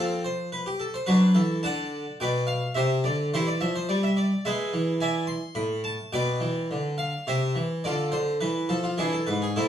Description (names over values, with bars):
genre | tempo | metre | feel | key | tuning
classical, baroque-style suite movement for harpsichord | 107 BPM | 3/4 | rubato | C major | A4 = 440 Hz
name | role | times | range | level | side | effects
harpsichord | solo | 0.0-9.7 s | G#2 to C6 | -24 LUFS | equal | none
room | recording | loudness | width
light reverb | small room reverb | -24 LUFS | side -10 dB against mid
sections
0.0-9.7 A section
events
none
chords
0.0 F; 1.1 D; 2.2 G7/B; 2.8 C; 4.4 E7; 5.6 N.C.; 6.1 G/B; 7.3 C; 7.8 Dm; 8.4 Fmaj7#11/E; 9.0 E7